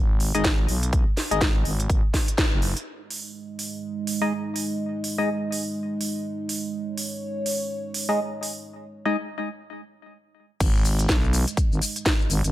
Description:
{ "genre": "bass house", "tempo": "124 BPM", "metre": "4/4", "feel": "swing 60% on 16ths", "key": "G# minor", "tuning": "A4 = 440 Hz", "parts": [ { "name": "growling FM bass", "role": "bass", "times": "0.0-2.7, 10.6-12.5 s", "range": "F#1 to B1", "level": "-24 LUFS", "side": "equal", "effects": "overdrive, sidechain pumping" }, { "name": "garage drum kit", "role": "drums", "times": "0.2-12.5 s", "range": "crash cymbal, hi-hat, shaker, snare drum", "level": "-28 LUFS", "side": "equal", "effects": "none" }, { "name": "percussive organ stab", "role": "stabs", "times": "0.3-9.2 s", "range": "G#3 to D#5", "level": "-27 LUFS", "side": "left 2 dB", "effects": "chorus, phaser, sidechain pumping, digital delay" }, { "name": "electronic kick drum", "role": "drums", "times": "0.4-2.5, 10.6-12.2 s", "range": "none", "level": "-22 LUFS", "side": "equal", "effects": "none" }, { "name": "dark analog pad", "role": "sustained chords", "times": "3.2-12.5 s", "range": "G#3 to D#5", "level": "-30 LUFS", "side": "right 2 dB", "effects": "chorus, sidechain pumping" } ], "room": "light reverb, digital ambience", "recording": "none", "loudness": "-22 LUFS", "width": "side -14 dB against mid", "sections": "0.0-2.9 A section; 2.9-10.6 B section; 10.6-12.5 C section", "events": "band accent 2.4; filter sweep on analog synth pad 2.9-10.6; break 8.7-10.6; drop 10.6-12.5", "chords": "0.0 G#5" }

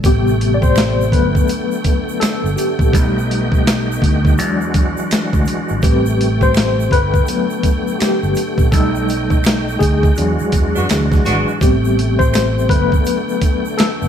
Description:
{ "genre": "R&B, neo-soul", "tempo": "83 BPM", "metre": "4/4", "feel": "swing 62% on 16ths", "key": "A dorian", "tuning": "A4 = 436 Hz", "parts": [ { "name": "tine electric piano", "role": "accompaniment", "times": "0.0-14.1 s", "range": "C3 to D5", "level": "-18 LUFS", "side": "left 3 dB", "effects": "medium tremolo" }, { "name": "bright tonewheel organ", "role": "sustained chords", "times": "0.0-14.1 s", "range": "C3 to G5", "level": "-23 LUFS", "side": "right 1 dB", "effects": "fast rotary speaker, overdrive, chorus vibrato" }, { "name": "fingered electric bass", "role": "bass", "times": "0.0-14.1 s", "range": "G1 to E3", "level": "-19 LUFS", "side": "equal", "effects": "none" }, { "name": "boom bap sampler-style drum kit", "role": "drums", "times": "0.0-14.0 s", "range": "hi-hat, kick drum, snare drum", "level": "-16 LUFS", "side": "equal", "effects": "none" }, { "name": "egg shaker and finger snaps", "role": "percussion", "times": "0.0-14.1 s", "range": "none", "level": "-33 LUFS", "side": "right 6 dB", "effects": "none" }, { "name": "mellow horn section", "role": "stabs", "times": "10.8-11.5 s", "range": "B3 to F#4", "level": "-21 LUFS", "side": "right 2 dB", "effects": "none" } ], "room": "moderate stone room reverb, RT60 1.2 s", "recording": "band playing live in one room", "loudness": "-13 LUFS", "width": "side -9 dB against mid", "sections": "0.0-14.1 A section", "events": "tine electric piano solo 0.0-14.1; band accent 8.7-11.6", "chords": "0.0 Am9; 1.1 Gmaj9; 2.9 B7alt; 4.4 E9; 5.8 Am9; 6.9 Gmaj9; 8.7 B7alt; 10.2 E9; 11.6 Am9; 12.7 Gmaj9" }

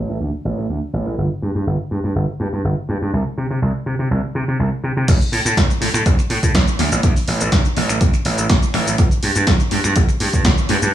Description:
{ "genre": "filtered disco house", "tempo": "123 BPM", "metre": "4/4", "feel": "straight", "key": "unclear", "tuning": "A4 = 441 Hz", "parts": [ { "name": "gritty slap bass", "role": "bass", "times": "0.0-10.9 s", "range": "G1 to C3", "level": "-18 LUFS", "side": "right 1 dB", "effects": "overdrive, sidechain pumping, low-pass filter" }, { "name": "electronic kick drum", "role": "drums", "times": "5.1-10.6 s", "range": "none", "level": "-16 LUFS", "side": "equal", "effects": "none" }, { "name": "punchy analog drum machine", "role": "drums", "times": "5.1-10.9 s", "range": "crash cymbal, finger snaps, hi-hat, shaker, snare drum", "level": "-20 LUFS", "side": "right 1 dB", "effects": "sidechain pumping on hats, sidechain pumping on cymbals, sidechain pumping on perc, analog delay" } ], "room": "little or no reverb", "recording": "echo-heavy mix, small room ambience", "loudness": "-15 LUFS", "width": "side -12 dB against mid", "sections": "0.0-5.1 A section; 5.1-10.9 B section", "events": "filter sweep on slap bass 0.0-5.1; drop 5.1-10.9", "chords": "none" }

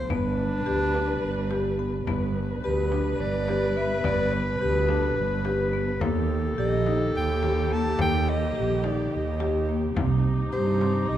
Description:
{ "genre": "contemporary instrumental, chamber music in an uneven meter", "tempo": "213 BPM (eighths)", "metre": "7/8", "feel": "straight", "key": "unclear", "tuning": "A4 = 440 Hz", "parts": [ { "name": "breathy soprano saxophone", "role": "melody", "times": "0.0-11.2 s", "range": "A4 to A5", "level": "-32 LUFS", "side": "left 1 dB", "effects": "none" }, { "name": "dark studio string section", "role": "sustained chords", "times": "0.0-11.2 s", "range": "C3 to B4", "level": "-34 LUFS", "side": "equal", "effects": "none" }, { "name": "marimba with medium mallets", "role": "arpeggios", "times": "0.0-11.2 s", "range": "Bb3 to G4", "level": "-29 LUFS", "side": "left 4 dB", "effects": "none" }, { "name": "warm clarinet", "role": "second line", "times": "0.1-11.2 s", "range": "D4 to B4", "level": "-31 LUFS", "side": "left 1 dB", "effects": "none" }, { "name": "warm double bass", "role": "bass", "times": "0.1-11.2 s", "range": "G1 to G2", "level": "-27 LUFS", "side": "right 4 dB", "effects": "none" }, { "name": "frame drum", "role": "percussion", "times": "0.1-11.2 s", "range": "none", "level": "-33 LUFS", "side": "left 2 dB", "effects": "none" } ], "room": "moderate recital hall reverb, RT60 1.4 s", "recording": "dark, warm production", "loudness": "-23 LUFS", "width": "side -11 dB against mid", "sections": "0.0-2.1 A section; 2.1-11.2 B section", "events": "none", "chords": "0.1 G; 6.0 Eb; 10.0 Cm" }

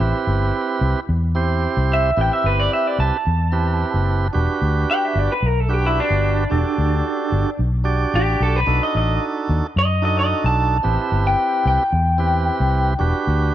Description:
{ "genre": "straight-eighth soul blues", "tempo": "111 BPM", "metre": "4/4", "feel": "straight", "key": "E minor", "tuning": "A4 = 441 Hz", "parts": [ { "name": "electric guitar through a small old amp", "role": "melody", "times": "0.0-13.2 s", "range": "D4 to A5", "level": "-21 LUFS", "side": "equal", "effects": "none" }, { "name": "tonewheel organ", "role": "accompaniment", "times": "0.0-13.5 s", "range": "C4 to D5", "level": "-23 LUFS", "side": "right 5 dB", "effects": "overdrive" }, { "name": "vintage muted fingered electric bass", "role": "bass", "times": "0.0-13.5 s", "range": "E1 to F#2", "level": "-19 LUFS", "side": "left 1 dB", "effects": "none" } ], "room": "light reverb, digital ambience", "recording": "none", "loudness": "-17 LUFS", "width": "side -12 dB against mid", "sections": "0.0-13.5 A section", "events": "clean electric guitar solo 0.0-13.5", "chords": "0.0 Am9; 4.3 Em9 (rootless); 8.7 B7#9; 10.8 Am9 (rootless); 13.0 Em9" }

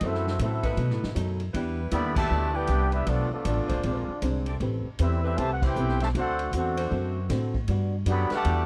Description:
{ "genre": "jazz, big band swing", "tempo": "156 BPM", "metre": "4/4", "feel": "swing 63% on 8ths", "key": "G major", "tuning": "A4 = 440 Hz", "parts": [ { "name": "mellow trumpet section", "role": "melody", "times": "0.0-8.7 s", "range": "B3 to B5", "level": "-32 LUFS", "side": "equal", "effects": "none" }, { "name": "muted trombone section", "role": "second line", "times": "0.0-8.7 s", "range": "B2 to G4", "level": "-37 LUFS", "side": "equal", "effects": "tape echo" }, { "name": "archtop guitar, miked and amplified", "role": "accompaniment", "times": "0.0-8.7 s", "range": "F#2 to B4", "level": "-36 LUFS", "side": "equal", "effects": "none" }, { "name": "upright bass", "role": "bass", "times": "0.0-8.7 s", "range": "D1 to B2", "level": "-30 LUFS", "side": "equal", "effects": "none" }, { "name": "swinging big-band drum kit", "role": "drums", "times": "0.0-8.6 s", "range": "crash cymbal, hi-hat, kick drum, ride cymbal, snare drum", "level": "-36 LUFS", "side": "equal", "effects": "none" }, { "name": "warm saxophone section", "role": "sustained chords", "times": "0.6-8.7 s", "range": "G3 to D5", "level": "-38 LUFS", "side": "equal", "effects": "none" } ], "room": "studio reverb", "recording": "none", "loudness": "-27 LUFS", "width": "mono", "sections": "0.0-8.7 A section", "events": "band accent 2.1, 5.6", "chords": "0.0 F#m7b5; 0.8 B7; 1.5 Em7; 3.1 Bm7b5; 3.8 Bb9; 4.6 Am9; 6.1 D7; 7.7 Gmaj7" }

